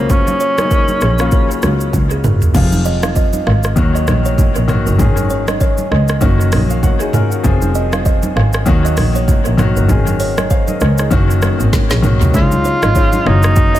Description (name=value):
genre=afrobeats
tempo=98 BPM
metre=4/4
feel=swing 58% on 16ths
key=unclear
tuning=A4 = 439 Hz
part: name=breathy tenor saxophone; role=melody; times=0.0-1.9, 12.3-13.8 s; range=Bb3 to F4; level=-17 LUFS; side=equal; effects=dub echo
part: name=clear grand piano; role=accompaniment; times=0.0-13.8 s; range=C3 to Ab5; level=-19 LUFS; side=left 4 dB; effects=dub echo
part: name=kalimba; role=riff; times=0.0-13.8 s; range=Gb4 to F5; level=-23 LUFS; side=right 4 dB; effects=dub echo
part: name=clear double bass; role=bass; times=0.0-13.7 s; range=F1 to Eb2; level=-15 LUFS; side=equal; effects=none
part: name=afro-pop drum kit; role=drums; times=0.1-13.8 s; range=crash cymbal, hi-hat, kick drum, rim click, shaker, snare drum, toms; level=-16 LUFS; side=equal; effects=overdrive, dub echo
part: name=congas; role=percussion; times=0.1-13.2 s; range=none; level=-24 LUFS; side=right 3 dB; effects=none
room=light reverb, small room ambience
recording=echo-heavy mix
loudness=-11 LUFS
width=side -13 dB against mid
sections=0.0-2.5 A section; 2.5-12.3 B section; 12.3-13.8 C section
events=drum fill 1.9-2.5, 11.7-12.3; grand piano fill 6.2-7.4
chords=0.0 Gbmaj7; 2.5 Fm; 3.8 Ebm; 5.0 Absus4; 6.2 Gb6; 7.4 Fm; 8.7 Ebm; 9.9 Absus4; 11.1 Gb6; 12.3 Dbsus2; 13.3 Gb6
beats=| 0.10 0.71 1.32 1.93 | 2.55 3.16 3.77 4.38 | 5.00 5.61 6.22 6.83 | 7.44 8.06 8.67 9.28 | 9.89 10.51 11.12 11.73 | 12.34 12.96 13.57